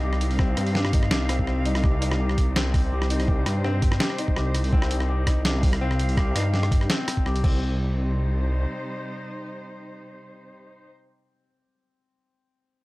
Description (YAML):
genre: half-time drum and bass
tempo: 166 BPM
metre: 4/4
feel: half-time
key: C minor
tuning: A4 = 438 Hz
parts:
  - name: rich symphonic cello section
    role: sustained chords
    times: 0.0-10.9 s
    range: C3 to F5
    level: -34 LUFS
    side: equal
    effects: sidechain pumping
  - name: felt-muted upright piano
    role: arpeggios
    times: 0.0-7.8 s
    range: C4 to G4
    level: -31 LUFS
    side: left 3 dB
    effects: vintage 12-bit sampler grit, tape echo
  - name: dark detuned saw bass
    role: bass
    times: 0.0-8.7 s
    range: C2 to G2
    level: -24 LUFS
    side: equal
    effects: tube saturation
  - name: boom bap sampler-style drum kit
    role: drums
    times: 0.1-7.5 s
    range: crash cymbal, hi-hat, rim click, snare drum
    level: -28 LUFS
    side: equal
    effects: none
  - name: electronic kick drum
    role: drums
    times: 0.4-7.5 s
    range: none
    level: -22 LUFS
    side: equal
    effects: none
room: digital ambience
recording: dry, gritty hardware recording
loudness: -21 LUFS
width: side -20 dB against mid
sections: 0.0-7.6 A section; 7.6-10.5 B section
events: drop 0.0-7.6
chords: 0.0 Cm; 7.4 C5; 7.6 Cm